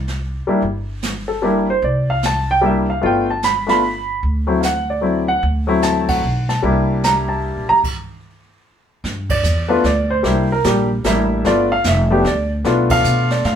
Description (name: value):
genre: jazz piano trio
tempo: 150 BPM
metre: 3/4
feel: swing 64% on 8ths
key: G mixolydian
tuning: A4 = 439 Hz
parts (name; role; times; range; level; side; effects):
- upright bass; bass; 0.0-13.6 s; F1 to B2; -21 LUFS; equal; none
- jazz brush drum kit; drums; 0.1-13.6 s; brushed snare drum, crash cymbal, hi-hat, kick drum, ride cymbal, snare drum; -25 LUFS; right 2 dB; none
- warm baby grand piano; melody; 0.5-13.6 s; F#3 to B5; -16 LUFS; equal; none
room: moderate studio reverb, RT60 0.6 s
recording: band playing live in one room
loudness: -15 LUFS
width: side -8 dB against mid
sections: 0.0-9.0 A section; 9.0-13.6 A section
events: band accent 6.0, 9.2, 12.8; stop 7.8-9.0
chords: 0.0 C9; 3.0 G9; 4.2 D9; 6.6 C9; 7.8 N.C.; 9.0 G; 10.2 C9; 11.4 G9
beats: 0.22 | 0.62 1.02 1.42 | 1.82 2.22 2.62 | 3.02 3.42 3.83 | 4.23 4.63 5.03 | 5.43 5.83 6.23 | 6.63 7.03 7.43 | 7.83 8.23 8.64 | 9.04 9.44 9.84 | 10.24 10.64 11.04 | 11.44 11.84 12.24 | 12.64 13.04 13.44